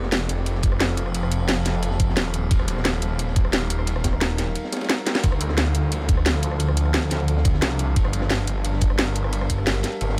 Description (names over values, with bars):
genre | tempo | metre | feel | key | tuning
dark technical drum and bass | 176 BPM | 4/4 | straight | D phrygian | A4 = 440 Hz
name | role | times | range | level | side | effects
metallic inharmonic drone | sustained chords | 0.0-10.2 s | F3 to F5 | -33 LUFS | equal | chorus, built-in reverb, sidechain pumping
snarling distorted saw bass | bass | 0.0-10.2 s | Eb1 to D2 | -26 LUFS | equal | distortion
crunchy breakbeat drum kit | drums | 0.0-10.2 s | ride cymbal, snare drum | -36 LUFS | equal | high-pass filter on cymbals, high-pass filter on snare, high-pass filter on room
drum and bass drum kit | drums | 0.0-10.1 s | hi-hat, rim click, snare drum | -27 LUFS | equal | none
electronic kick drum | drums | 0.6-9.6 s | none | -23 LUFS | equal | none
room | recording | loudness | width
little or no reverb | none | -22 LUFS | mono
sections
0.0-10.2 A section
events
drum fill 5.1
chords
0.0 F; 2.5 Ebadd9; 5.2 Dm; 8.0 Gm7